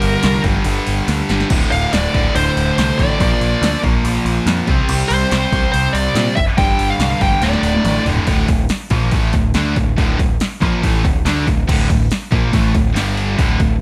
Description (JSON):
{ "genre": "hard rock", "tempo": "142 BPM", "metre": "4/4", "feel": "straight", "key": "D minor", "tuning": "A4 = 440 Hz", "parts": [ { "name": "high-gain lead guitar", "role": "melody", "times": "0.0-8.0 s", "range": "Bb4 to G5", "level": "-22 LUFS", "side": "equal", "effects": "distortion" }, { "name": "high-gain distorted guitar", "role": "riff", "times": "0.0-13.8 s", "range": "D2 to D4", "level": "-24 LUFS", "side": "equal", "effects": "distortion" }, { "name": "sludgy distorted guitar", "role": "riff", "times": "0.0-13.8 s", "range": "D2 to D4", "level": "-26 LUFS", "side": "equal", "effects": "overdrive" }, { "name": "sludgy distorted guitar", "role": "riff", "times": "0.0-13.8 s", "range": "D2 to D4", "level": "-28 LUFS", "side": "equal", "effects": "none" }, { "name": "growling picked electric bass", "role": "bass", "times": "0.0-13.8 s", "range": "D1 to Bb2", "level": "-22 LUFS", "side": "equal", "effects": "overdrive" }, { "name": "punchy analog drum machine", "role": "drums", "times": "0.0-13.7 s", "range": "crash cymbal, hi-hat, kick drum, snare drum, toms", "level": "-21 LUFS", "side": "equal", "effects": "none" } ], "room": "little or no reverb", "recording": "none", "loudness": "-16 LUFS", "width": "mono", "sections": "0.0-8.3 A section; 8.3-13.8 B section", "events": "drum fill 1.1-1.5, 7.4-8.3", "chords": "0.0 Gm; 1.5 D5; 3.2 Bb; 4.7 C5; 6.6 G5; 7.4 D5; 8.3 Dm; 13.0 G5" }